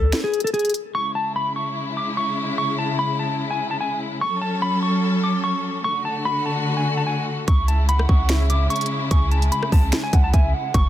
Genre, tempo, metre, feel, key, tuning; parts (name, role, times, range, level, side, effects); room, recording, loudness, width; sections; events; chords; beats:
hip hop, trap; 147 BPM; 4/4; half-time; C# phrygian; A4 = 442 Hz
mellow electric guitar; melody; 0.0-10.9 s; G#4 to D6; -24 LUFS; left 1 dB; ping-pong delay
clean 808-style bass; bass; 0.0-0.1, 7.5-10.9 s; F#1 to D2; -19 LUFS; equal
trap drum kit; drums; 0.1-0.8, 7.5-10.8 s; finger snaps, hi-hat, kick drum, rim click, snare drum; -20 LUFS; equal
rich symphonic string section; sustained chords; 0.9-10.9 s; C#3 to A4; -24 LUFS; left 1 dB
hollow clarinet-like synth lead; second line; 7.7-10.7 s; E5 to G#5; -32 LUFS; right 6 dB; chorus, ping-pong delay
digital ambience; dense, heavily limited modern master; -19 LUFS; side -12 dB against mid
0.9-10.9 A section
break 0.1-0.9
0.0 Bm13/D (rootless); 0.9 C#m; 4.2 F#m; 5.8 D; 7.5 C#m
0.13 0.54 | 0.95 1.36 1.76 2.17 | 2.58 2.99 3.40 3.81 | 4.21 4.62 5.03 5.44 | 5.84 6.25 6.66 7.07 | 7.48 7.89 8.29 8.70 | 9.11 9.52 9.93 10.34 | 10.74